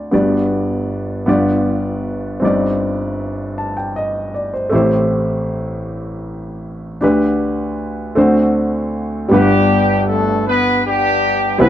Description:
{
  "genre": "gospel",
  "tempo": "52 BPM (dotted quarters)",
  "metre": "6/8",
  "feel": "straight",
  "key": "G major",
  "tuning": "A4 = 440 Hz",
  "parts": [
    { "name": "warm grand piano", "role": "accompaniment", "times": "0.0-11.7 s", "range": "G1 to A5", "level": "-15 LUFS", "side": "equal", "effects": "none" },
    { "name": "mellow horn section", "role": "melody", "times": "9.3-11.7 s", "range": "G3 to B4", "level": "-14 LUFS", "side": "left 1 dB", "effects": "none" }
  ],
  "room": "moderate large studio reverb, RT60 0.9 s",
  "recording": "none",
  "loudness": "-14 LUFS",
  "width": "side -11 dB against mid",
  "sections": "0.0-9.3 A section; 9.3-11.7 B section",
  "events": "none",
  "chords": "0.1 Gmaj7; 1.3 G7; 2.4 Cmadd9/G; 4.7 Am7; 7.0 G/D; 8.2 D7; 9.3 Gmaj7"
}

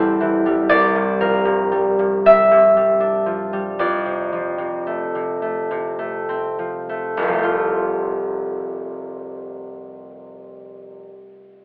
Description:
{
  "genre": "classical, solo harp piece",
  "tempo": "32-42 BPM (dotted quarters)",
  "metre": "6/8",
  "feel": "rubato",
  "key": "F major",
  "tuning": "A4 = 440 Hz",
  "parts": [
    { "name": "concert harp", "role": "solo", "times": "0.0-11.1 s", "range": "F1 to E5", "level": "-19 LUFS", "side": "equal", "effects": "none" }
  ],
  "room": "wet recital hall reverb, RT60 1.5 s",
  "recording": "telephone sound",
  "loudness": "-19 LUFS",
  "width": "mono",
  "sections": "0.0-7.2 A section; 7.2-10.6 B section",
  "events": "slowing down 0.0-7.2",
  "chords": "0.0 Am7; 0.7 C9sus4; 3.8 F6; 7.2 F"
}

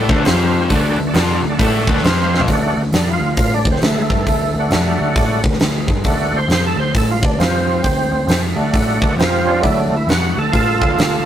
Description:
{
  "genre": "blues rock power trio and southern rock",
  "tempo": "134 BPM",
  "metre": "4/4",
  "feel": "swing 63% on 8ths",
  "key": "unclear",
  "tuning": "A4 = 440 Hz",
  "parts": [
    { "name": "overdriven tonewheel organ", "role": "sustained chords", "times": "0.0-11.3 s", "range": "F3 to F5", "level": "-19 LUFS", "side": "right 2 dB", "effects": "slow rotary speaker, chorus vibrato" },
    { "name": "overdriven electric guitar", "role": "riff", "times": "0.0-2.5 s", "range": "D3 to A4", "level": "-18 LUFS", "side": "left 2 dB", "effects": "none" },
    { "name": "vintage muted picked electric bass", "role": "bass", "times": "0.0-11.2 s", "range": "D2 to A2", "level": "-19 LUFS", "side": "equal", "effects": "none" },
    { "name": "huge arena drum kit", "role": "drums", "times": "0.1-11.1 s", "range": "hi-hat, kick drum, snare drum, toms", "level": "-18 LUFS", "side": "equal", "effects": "none" }
  ],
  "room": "light reverb",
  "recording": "rough rehearsal-room recording, tube saturation",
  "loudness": "-14 LUFS",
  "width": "side -10 dB against mid",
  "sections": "0.0-2.5 A section; 2.5-11.3 B section",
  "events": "drum fill 2.3; tonewheel organ solo 2.5-11.3",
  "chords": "0.3 F5; 0.7 D; 2.0 F5; 2.5 D; 7.4 F5; 7.8 D; 9.2 F5; 9.6 D"
}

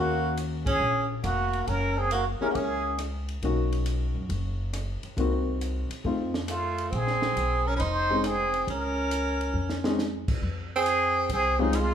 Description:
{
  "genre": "jazz, small-group swing and bop",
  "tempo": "137 BPM",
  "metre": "4/4",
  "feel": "swing 68% on 8ths",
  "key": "Bb minor",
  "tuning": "A4 = 439 Hz",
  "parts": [
    { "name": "trumpet with plunger mute", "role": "melody", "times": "0.0-3.0, 6.5-11.9 s", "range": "Eb4 to C5", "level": "-28 LUFS", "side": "right 1 dB", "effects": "none" },
    { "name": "bright tenor saxophone", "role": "second line", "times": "0.0-3.0, 6.5-11.9 s", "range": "Gb3 to Eb4", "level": "-30 LUFS", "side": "right 4 dB", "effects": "none" },
    { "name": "dark baby grand piano", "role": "accompaniment", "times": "0.0-11.7 s", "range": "Ab3 to F5", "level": "-30 LUFS", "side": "left 3 dB", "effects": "none" },
    { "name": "upright bass", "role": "bass", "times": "0.0-11.9 s", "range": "F1 to F#2", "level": "-30 LUFS", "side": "left 1 dB", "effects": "none" },
    { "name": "compact cocktail drum kit", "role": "drums", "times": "0.4-11.9 s", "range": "crash cymbal, hi-hat, kick drum, ride cymbal, rim click, snare drum", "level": "-36 LUFS", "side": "equal", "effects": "none" }
  ],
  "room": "moderate large studio reverb, RT60 1.1 s",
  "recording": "heard from further back in the room",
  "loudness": "-25 LUFS",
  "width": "side -9 dB against mid",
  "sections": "0.0-10.4 A section; 10.4-11.9 B section",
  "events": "band accent 0.6; drum fill 9.6-10.0",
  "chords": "0.0 Ebm9; 1.7 Gb9; 3.4 Bmaj9; 5.2 Cm7b5; 6.1 F7; 6.9 Bbm9; 10.4 Fm"
}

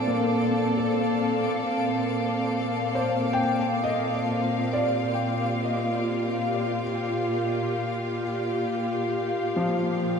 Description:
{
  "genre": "ambient",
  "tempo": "free time",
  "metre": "none",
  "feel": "none",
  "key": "unclear",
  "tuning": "A4 = 439 Hz",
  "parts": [
    { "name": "warm studio string section", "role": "sustained chords", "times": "0.0-10.2 s", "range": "Bb2 to F5", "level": "-25 LUFS", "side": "equal", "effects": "none" },
    { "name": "felt-muted upright piano", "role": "arpeggios", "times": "0.0-10.2 s", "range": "F3 to G5", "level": "-29 LUFS", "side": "left 2 dB", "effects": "ping-pong delay" },
    { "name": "twinkling granular texture", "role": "texture", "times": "0.0-10.2 s", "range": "D5 to D6", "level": "-37 LUFS", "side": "right 2 dB", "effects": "built-in reverb" }
  ],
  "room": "wet lush hall reverb, RT60 2.8 s",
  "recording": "dark, warm production",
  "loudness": "-23 LUFS",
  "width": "side -6 dB against mid",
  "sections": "0.0-10.2 A section",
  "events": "fade-out on synth texture 0.0-10.2",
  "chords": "0.0 Bbmaj7; 3.4 Ebmaj7/Bb"
}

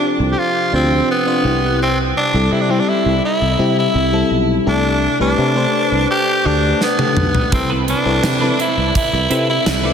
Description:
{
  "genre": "1980s-style pop",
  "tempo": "84 BPM",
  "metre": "4/4",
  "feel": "straight",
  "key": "C major",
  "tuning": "A4 = 439 Hz",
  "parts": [
    { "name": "raspy tenor saxophone", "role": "melody", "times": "0.0-9.9 s", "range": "B3 to G4", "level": "-17 LUFS", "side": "right 1 dB", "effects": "none" },
    { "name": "FM electric piano", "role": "accompaniment", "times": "0.0-9.9 s", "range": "C3 to D5", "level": "-19 LUFS", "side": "left 3 dB", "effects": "chorus" },
    { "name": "sustaining fretless electric bass", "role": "bass", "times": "0.2-9.9 s", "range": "B1 to C3", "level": "-19 LUFS", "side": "right 1 dB", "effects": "none" },
    { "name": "gated 80s drum kit", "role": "drums", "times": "6.8-9.8 s", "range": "hi-hat, kick drum, snare drum, toms", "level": "-20 LUFS", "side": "right 1 dB", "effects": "none" },
    { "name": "twelve-string electric guitar", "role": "riff", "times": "7.5-9.9 s", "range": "C4 to B4", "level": "-24 LUFS", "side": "right 4 dB", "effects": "ensemble chorus" }
  ],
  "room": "wet lush hall reverb, RT60 3.0 s",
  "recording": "big arena sound",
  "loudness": "-13 LUFS",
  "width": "side -7 dB against mid",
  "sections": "0.0-9.9 A section",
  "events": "drum fill 6.8-7.5",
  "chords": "0.0 F6/C; 1.5 C; 4.7 Gsus2/C; 7.5 Amadd9/C"
}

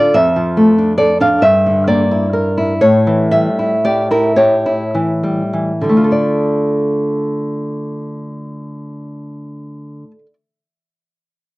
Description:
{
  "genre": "classical",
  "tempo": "33-47 BPM (dotted quarters)",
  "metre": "6/8",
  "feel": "rubato",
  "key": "D minor",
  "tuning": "A4 = 439 Hz",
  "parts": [
    { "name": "nylon-string guitar", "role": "accompaniment", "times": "0.0-10.3 s", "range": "F2 to F5", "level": "-13 LUFS", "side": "equal", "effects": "cassette tape" }
  ],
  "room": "moderate small room reverb, RT60 0.6 s",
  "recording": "home recording on cassette",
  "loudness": "-12 LUFS",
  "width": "side -20 dB against mid",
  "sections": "0.0-6.1 A section; 6.1-9.5 B section",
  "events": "slowing down 0.0-6.1",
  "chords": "0.2 Dm/F; 1.4 Em7b5/G; 2.8 A7; 6.1 Dm"
}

